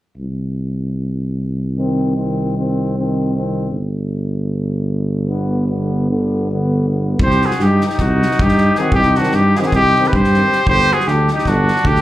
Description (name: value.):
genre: balkan folk, Balkan brass band.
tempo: 309 BPM (eighths).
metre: 9/8.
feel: straight.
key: C hungarian minor.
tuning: A4 = 441 Hz.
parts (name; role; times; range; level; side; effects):
mellow tuba; bass; 0.2-12.0 s; G1 to G2; -17 LUFS; equal; none.
warm euphonium; accompaniment; 1.8-10.5 s; D3 to Eb3; -24 LUFS; right 4 dB; slapback echo.
warm trombone; accompaniment; 1.8-10.5 s; B3 to C4; -23 LUFS; left 4 dB; slapback echo.
clear trumpet; melody; 7.2-12.0 s; F#4 to C5; -16 LUFS; equal; slapback echo.
loose indie drum kit; percussion; 7.2-12.0 s; kick drum, snare drum; -21 LUFS; equal; none.
warm flugelhorn; second line; 7.3-12.0 s; D4 to G4; -21 LUFS; left 2 dB; slapback echo.
room: moderate club ambience, RT60 0.5 s.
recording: live gig heard through the venue's PA, club ambience.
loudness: -14 LUFS.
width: side -14 dB against mid.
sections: 0.2-7.2 A section; 7.2-12.0 B section.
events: none.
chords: 0.2 Cm; 3.7 G; 7.2 Cm; 10.7 G5.